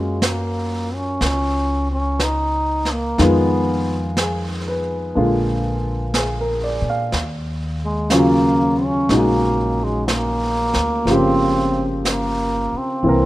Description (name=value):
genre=jazz ballad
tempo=61 BPM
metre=4/4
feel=swing 69% on 8ths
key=Eb minor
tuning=A4 = 440 Hz
part: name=trombone with metal mute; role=melody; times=0.0-13.3 s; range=Ab3 to Eb4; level=-21 LUFS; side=equal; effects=none
part: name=clear baby grand piano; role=accompaniment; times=0.0-13.3 s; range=Db3 to F5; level=-20 LUFS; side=equal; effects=none
part: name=upright bass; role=bass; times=0.0-13.3 s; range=G1 to Bb2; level=-24 LUFS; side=equal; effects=none
part: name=vintage brush drum kit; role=drums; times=0.2-13.3 s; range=brushed snare drum, hi-hat, snare drum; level=-26 LUFS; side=right 1 dB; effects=none
room=light reverb, studio reverb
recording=rough home demo mix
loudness=-17 LUFS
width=side -16 dB against mid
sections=0.0-13.3 A section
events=none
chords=0.0 Gbmaj7; 3.2 Fm7b5; 5.2 Bb7; 7.1 Ebm9; 11.1 Gm7b5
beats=0.23 1.22 2.20 | 3.19 4.17 5.16 6.14 | 7.12 8.11 9.09 10.08 | 11.06 12.05 13.04